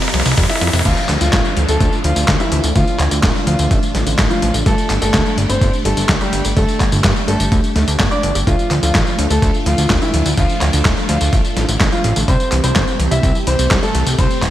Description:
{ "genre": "italo disco", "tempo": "126 BPM", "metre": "4/4", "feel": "straight", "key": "D minor", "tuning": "A4 = 437 Hz", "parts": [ { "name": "string machine, full ensemble", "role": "sustained chords", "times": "0.0-14.5 s", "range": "G3 to G4", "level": "-23 LUFS", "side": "equal", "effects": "ensemble chorus" }, { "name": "dusty soul sampler-style drum kit", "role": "drums", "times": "0.0-14.5 s", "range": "crash cymbal, handclaps, hi-hat, snare drum, tambourine", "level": "-19 LUFS", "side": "equal", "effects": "overdrive, high-pass filter on snare, high-pass filter on hats, high-pass filter on perc, high-pass filter on cymbals, high-pass filter on room, gated reverb" }, { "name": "riser and downlifter", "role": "sound effects", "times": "0.0-4.7 s", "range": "none", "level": "-26 LUFS", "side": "left 1 dB", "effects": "none" }, { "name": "wide unison pluck", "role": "arpeggios", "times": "0.1-14.5 s", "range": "C3 to G4", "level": "-26 LUFS", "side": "right 2 dB", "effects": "none" }, { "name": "fat analog bass", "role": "bass", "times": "0.1-14.5 s", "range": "D1 to G2", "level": "-17 LUFS", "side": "equal", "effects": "none" }, { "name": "electronic kick drum", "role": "drums", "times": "0.4-14.5 s", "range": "none", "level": "-18 LUFS", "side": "equal", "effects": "overdrive" }, { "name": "clear concert grand piano", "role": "melody", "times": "0.5-14.4 s", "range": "E3 to E5", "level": "-21 LUFS", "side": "left 1 dB", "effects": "vintage 12-bit sampler grit, digital delay" } ], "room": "light reverb", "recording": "bright 1980s-style digital production", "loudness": "-13 LUFS", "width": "side -13 dB against mid", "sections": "0.9-14.5 A section", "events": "drum fill 0.0-0.9; riser 0.0-0.9", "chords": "0.0 Fsus2; 0.9 Dm; 4.7 Gsus2; 8.5 Dm; 12.3 Am7" }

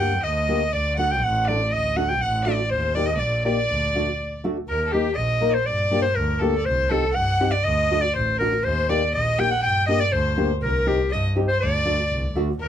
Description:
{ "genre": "klezmer", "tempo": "121 BPM", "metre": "2/4", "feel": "straight", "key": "D phrygian dominant", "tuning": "A4 = 440 Hz", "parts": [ { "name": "bright clarinet", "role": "melody", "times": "0.0-12.7 s", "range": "G4 to G5", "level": "-23 LUFS", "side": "equal", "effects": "none" }, { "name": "warm violin", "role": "second line", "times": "0.0-12.7 s", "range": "G4 to G5", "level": "-30 LUFS", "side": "left 2 dB", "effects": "none" }, { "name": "nylon-string guitar", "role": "accompaniment", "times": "0.0-12.5 s", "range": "A3 to Bb4", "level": "-25 LUFS", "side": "left 2 dB", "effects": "none" }, { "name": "rich double bass", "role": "bass", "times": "0.0-12.7 s", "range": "A1 to G2", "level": "-25 LUFS", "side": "equal", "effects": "none" } ], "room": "light reverb", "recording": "none", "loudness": "-20 LUFS", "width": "side -9 dB against mid", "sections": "0.0-4.7 A section; 4.7-12.6 B section", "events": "break 4.2-4.7", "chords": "0.0 Gm; 0.7 D; 2.7 Eb; 3.7 D; 4.7 Eb; 5.7 Gm; 6.7 Cm; 7.6 D; 8.6 Eb; 9.6 Gm; 10.6 Cm; 11.6 D" }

